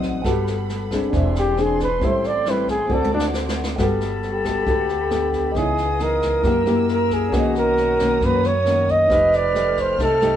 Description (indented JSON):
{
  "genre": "bossa nova",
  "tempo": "136 BPM",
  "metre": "4/4",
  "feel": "straight",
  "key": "unclear",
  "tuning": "A4 = 443 Hz",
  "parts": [
    { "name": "dark baby grand piano", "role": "accompaniment", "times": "0.0-10.4 s", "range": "B3 to F#5", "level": "-31 LUFS", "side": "right 3 dB", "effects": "none" },
    { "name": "nylon-string guitar", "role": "accompaniment", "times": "0.0-10.4 s", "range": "F#2 to A4", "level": "-24 LUFS", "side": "left 2 dB", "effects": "none" },
    { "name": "dark studio violin section", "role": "sustained chords", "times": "0.0-10.4 s", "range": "B3 to F6", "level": "-34 LUFS", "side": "left 2 dB", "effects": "none" },
    { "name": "upright bass", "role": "bass", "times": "0.0-10.4 s", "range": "E1 to F#2", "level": "-27 LUFS", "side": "equal", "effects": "none" },
    { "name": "jazz brush drum kit", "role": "drums", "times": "0.0-10.3 s", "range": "kick drum, rim click, snare drum, toms", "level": "-28 LUFS", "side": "equal", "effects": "none" },
    { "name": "breathy flugelhorn", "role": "melody", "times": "1.4-10.4 s", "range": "D4 to D#5", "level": "-20 LUFS", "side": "right 1 dB", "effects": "none" },
    { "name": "breathy silver concert flute", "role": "second line", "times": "3.8-10.4 s", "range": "F#4 to B4", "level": "-26 LUFS", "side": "left 1 dB", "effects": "none" }
  ],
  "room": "light reverb",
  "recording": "band playing live in one room",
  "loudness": "-17 LUFS",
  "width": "side -10 dB against mid",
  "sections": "0.0-3.8 A section; 3.8-10.4 B section",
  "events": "flugelhorn solo 0.0-3.8; drum fill 2.9-3.8",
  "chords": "0.2 Gmaj9; 1.1 Eaug7; 2.0 Am7; 2.9 D7; 3.8 Gmaj9; 5.6 C#m9; 6.4 F#7b9; 7.3 Bmaj9; 9.1 F9"
}